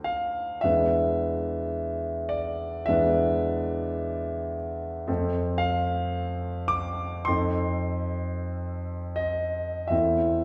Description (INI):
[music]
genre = classical, romantic nocturne for solo piano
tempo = 40-56 BPM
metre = 4/4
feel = rubato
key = unclear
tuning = A4 = 443 Hz
[part]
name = warm grand piano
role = solo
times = 0.0-10.4 s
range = D2 to D6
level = -27 LUFS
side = equal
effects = none
[sound]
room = wet recital hall reverb, RT60 1.6 s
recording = heard from further back in the room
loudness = -27 LUFS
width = mono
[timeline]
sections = 0.0-10.4 A section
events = none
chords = 0.0 Dm7; 0.6 E7; 5.1 F; 7.3 F7; 9.9 Am/E